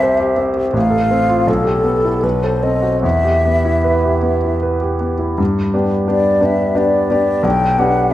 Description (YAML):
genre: classical, romantic duo for flute and grand piano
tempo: 73-91 BPM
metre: 3/4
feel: rubato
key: E minor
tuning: A4 = 441 Hz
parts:
  - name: mellow hollow concert flute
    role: melody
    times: 0.0-8.1 s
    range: A4 to G5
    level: -17 LUFS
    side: left 2 dB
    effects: none
  - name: clear concert grand piano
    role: accompaniment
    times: 0.0-8.1 s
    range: A1 to C5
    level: -15 LUFS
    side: equal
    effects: none
room: wet recital hall reverb, RT60 1.6 s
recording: none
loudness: -13 LUFS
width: side -13 dB against mid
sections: 0.0-5.4 A section; 5.4-8.1 B section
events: none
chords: 0.0 C; 0.8 F/A; 1.5 Em/B; 2.2 B7b9; 3.0 Em; 5.4 G; 7.4 G/B